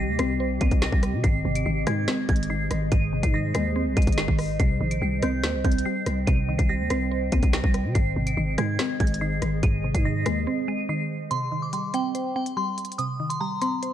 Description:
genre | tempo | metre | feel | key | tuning
hip hop, drill | 143 BPM | 4/4 | half-time | C minor | A4 = 436 Hz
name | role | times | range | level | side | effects
glassy synth bell | melody | 0.0-13.9 s | G5 to Eb7 | -31 LUFS | equal | chorus, low-pass filter, tape echo
mallet-like synth pluck | accompaniment | 0.0-13.9 s | Ab2 to C5 | -28 LUFS | right 1 dB | chorus, low-pass filter
granular cloud pad | sustained chords | 0.0-11.3 s | C3 to G5 | -34 LUFS | equal | built-in reverb
growling 808-style bass | bass | 0.0-10.5 s | Ab1 to C3 | -27 LUFS | equal | none
drill drum kit | drums | 0.2-13.9 s | hi-hat, kick drum, rim click, snare drum | -24 LUFS | equal | vintage 12-bit sampler grit
room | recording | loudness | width
digital ambience | dark, warm production | -22 LUFS | side -11 dB against mid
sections
0.0-11.3 A section; 11.3-13.9 B section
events
break 10.5-11.3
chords
0.0 Cm; 1.2 Ab; 4.6 Cm; 8.0 Ab; 11.3 Cm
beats
0.40 0.82 | 1.24 1.66 2.08 2.50 | 2.92 3.34 3.76 4.18 | 4.60 5.02 5.43 5.86 | 6.27 6.69 7.11 7.53 | 7.95 8.37 8.79 9.21 | 9.63 10.05 10.47 10.89 | 11.31 11.73 12.15 12.57 | 12.99 13.41 13.83

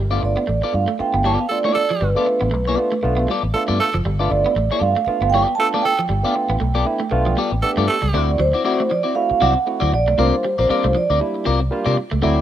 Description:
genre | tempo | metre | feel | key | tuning
funk | 118 BPM | 4/4 | swing 56% on 16ths | unclear | A4 = 440 Hz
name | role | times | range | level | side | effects
electric guitar at the edge of break-up | riff | 0.0-12.3 s | F3 to B3 | -28 LUFS | right 4 dB | wide subtle chorus
vintage muted fingered electric bass | bass | 0.0-12.4 s | F#1 to C3 | -20 LUFS | equal | none
clean electric guitar | accompaniment | 0.1-12.4 s | B3 to D5 | -24 LUFS | left 6 dB | wide subtle chorus
barky tine electric piano | stabs | 0.1-12.4 s | F#3 to G4 | -25 LUFS | right 2 dB | analog chorus
vibraphone with soft mallets | melody | 0.2-11.4 s | B4 to A5 | -20 LUFS | right 3 dB | none
growling tenor saxophone | second line | 1.5-8.2 s | A4 | -22 LUFS | right 3 dB | none
room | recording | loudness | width
small room ambience | rough home demo mix, lossy compression artefacts | -16 LUFS | side -11 dB against mid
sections
0.0-8.1 A section; 8.1-12.4 B section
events
none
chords
0.0 G9; 8.1 D9; 10.2 C9sus4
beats
0.48 0.99 1.50 | 2.01 2.52 3.03 3.54 | 4.05 4.56 5.07 5.58 | 6.09 6.61 7.12 7.63 | 8.14 8.65 9.16 9.67 | 10.18 10.69 11.20 11.71 | 12.22

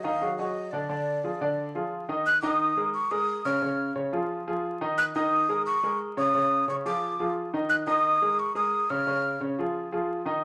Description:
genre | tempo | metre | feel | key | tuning
latin | 176 BPM | 4/4 | straight | Eb minor | A4 = 439 Hz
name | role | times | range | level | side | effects
breathy mellow jazz flute | melody | 0.0-9.4 s | D5 to Gb6 | -28 LUFS | equal | none
warm concert grand piano | accompaniment | 0.0-10.4 s | Db3 to Eb5 | -31 LUFS | equal | none
room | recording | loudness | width
moderate large studio reverb, RT60 0.8 s | vinyl crackle | -27 LUFS | mono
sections
0.0-2.3 A section; 2.3-10.4 B section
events
none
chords
0.0 Ab5; 0.9 Ddim; 2.3 Eb5; 2.9 Absus2; 3.6 Db; 4.3 Ebsus24; 5.0 Eb5; 5.7 Absus2; 6.3 Db; 7.0 Ebsus24; 7.7 Eb5; 8.4 Absus2; 9.1 Db; 9.7 Ebsus24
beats
0.22 0.56 | 0.90 1.24 1.58 1.92 | 2.26 2.60 2.94 3.28 | 3.62 3.96 4.30 4.64 | 4.98 5.32 5.66 6.00 | 6.34 6.68 7.02 7.36 | 7.70 8.04 8.38 8.72 | 9.06 9.40 9.75 10.09 | 10.43

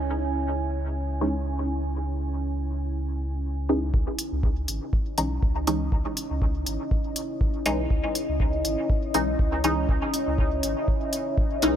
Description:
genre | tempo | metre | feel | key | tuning
dub techno | 121 BPM | 4/4 | swing 55% on 16ths | C# minor | A4 = 438 Hz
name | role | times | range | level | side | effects
deep dark ambient pad | sustained chords | 0.0-11.8 s | C#4 to G#5 | -30 LUFS | equal | chorus, built-in reverb, sidechain pumping
warm sub bass | bass | 0.0-11.8 s | G#1 to C#2 | -29 LUFS | equal | sidechain pumping
filtered dub chord stab | stabs | 1.2-11.8 s | E3 to D#4 | -28 LUFS | left 1 dB | phaser, sidechain pumping, dub echo
electronic kick drum | drums | 3.9-11.5 s | none | -25 LUFS | equal | small room ambience
electronic hi-hat | drums | 4.2-11.7 s | none | -29 LUFS | equal | small room ambience
room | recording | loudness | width
digital ambience | none | -24 LUFS | side -9 dB against mid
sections
0.0-3.9 A section; 3.9-11.8 B section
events
filter sweep on ambient pad 0.0-3.9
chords
0.0 C#m; 3.9 C#madd9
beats
0.47 0.96 1.46 | 1.96 2.45 2.95 3.44 | 3.94 4.43 4.93 5.43 | 5.92 6.42 6.91 7.41 | 7.91 8.40 8.90 9.39 | 9.89 10.38 10.88 11.38

